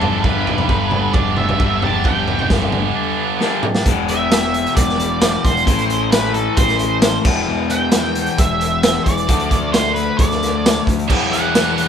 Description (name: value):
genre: quiet-loud alternative rock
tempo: 133 BPM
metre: 4/4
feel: straight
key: E minor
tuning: A4 = 440 Hz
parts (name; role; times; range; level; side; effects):
- octave-fuzz lead guitar; melody; 0.0-11.9 s; A4 to A5; -21 LUFS; right 2 dB; distortion
- twangy electric guitar; arpeggios; 0.0-3.9 s; G2 to D4; -27 LUFS; right 2 dB; harmonic tremolo
- heavy high-gain guitar; riff; 0.0-3.6, 11.1-11.9 s; G2 to E4; -22 LUFS; right 8 dB; distortion
- raw garage guitar; riff; 0.0-11.9 s; E2 to D4; -21 LUFS; left 6 dB; overdrive
- growling picked electric bass; bass; 0.0-11.9 s; E1 to E2; -24 LUFS; right 1 dB; overdrive
- raw garage drum kit; drums; 0.0-11.9 s; crash cymbal, hi-hat, kick drum, snare drum, toms; -18 LUFS; equal; none
room: moderate large studio reverb, RT60 1.0 s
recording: band playing live in one room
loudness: -14 LUFS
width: side -8 dB against mid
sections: 0.0-3.9 A section; 3.9-11.9 B section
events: lead electric guitar solo 0.0-3.9; drum fill 3.4-3.9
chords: 0.0 G; 3.9 E5; 5.7 Am; 7.2 Em; 9.3 D5; 11.1 Em